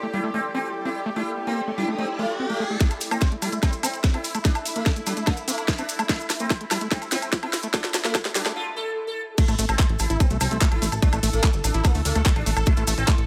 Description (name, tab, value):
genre	psychedelic trance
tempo	146 BPM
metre	4/4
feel	straight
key	A phrygian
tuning	A4 = 441 Hz
part	bubbling stepped-filter texture	sustained chords	0.0-13.3 s	E4 to A4	-38 LUFS	equal	chorus, built-in reverb, sidechain pumping
part	overdriven acid bass	riff	0.0-13.1 s	G3 to E4	-33 LUFS	equal	distortion, sidechain pumping, dub echo
part	riser	sound effects	0.2-2.8 s	none	-37 LUFS	equal	none
part	ethereal airy pad	texture	0.0-13.3 s	E4 to E5	-40 LUFS	equal	ensemble chorus, built-in reverb, sidechain pumping
part	sitar	melody	0.1-13.1 s	A3 to A4	-34 LUFS	equal	phaser, sidechain pumping, dub echo
part	electronic kick drum	drums	2.8-13.2 s	none	-22 LUFS	equal	overdrive
part	garage drum kit	drums	2.8-13.3 s	crash cymbal, handclaps, hi-hat, snare drum, woodblock	-29 LUFS	equal	overdrive
part	maracas	percussion	2.8-13.2 s	none	-36 LUFS	equal	none
part	plucky analog bass	bass	9.5-13.2 s	G1 to D2	-26 LUFS	equal	none
room	light reverb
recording	high-pass filter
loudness	-24 LUFS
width	mono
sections	0.0-2.8 A section; 2.8-9.4 B section; 9.4-13.3 C section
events	filter sweep on acid bass 0.0-2.8, 2.8-9.4; riser 0.6-2.8; build-up 2.8-9.4; drum fill 2.8-8.6; filter sweep 2.8-9.4; drop 9.4-13.3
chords	0.0 A5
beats	0.34 0.75 | 1.16 1.57 1.98 2.40 | 2.81 3.22 3.63 4.04 | 4.45 4.86 5.27 5.68 | 6.09 6.50 6.92 7.33 | 7.74 8.15 8.56 8.97 | 9.38 9.79 10.20 10.61 | 11.03 11.44 11.85 12.26 | 12.67 13.08